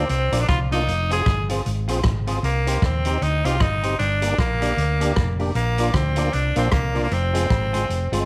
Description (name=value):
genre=ska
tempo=154 BPM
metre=4/4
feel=swing 59% on 8ths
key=unclear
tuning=A4 = 442 Hz
part: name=raspy tenor saxophone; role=melody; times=0.0-8.3 s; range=Bb3 to Ab4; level=-27 LUFS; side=equal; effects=slapback echo
part: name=semi-hollow electric guitar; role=accompaniment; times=0.0-8.2 s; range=Eb4 to D5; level=-34 LUFS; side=equal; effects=slapback echo
part: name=tonewheel organ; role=stabs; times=0.0-8.2 s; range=Ab3 to Ab4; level=-32 LUFS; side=equal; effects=overdrive, chorus vibrato, slow rotary speaker
part: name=hollow-body short-scale fingered electric bass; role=bass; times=0.0-8.3 s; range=F1 to Eb2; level=-25 LUFS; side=equal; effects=none
part: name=vintage drum kit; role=drums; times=0.1-8.2 s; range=hi-hat, kick drum, rim click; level=-28 LUFS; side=equal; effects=none
room=light reverb, studio ambience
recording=none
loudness=-21 LUFS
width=mono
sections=0.0-8.3 A section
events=none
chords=0.0 Bb; 0.9 Fm; 2.4 Cm; 4.0 Gm; 5.6 Bb; 7.1 Fm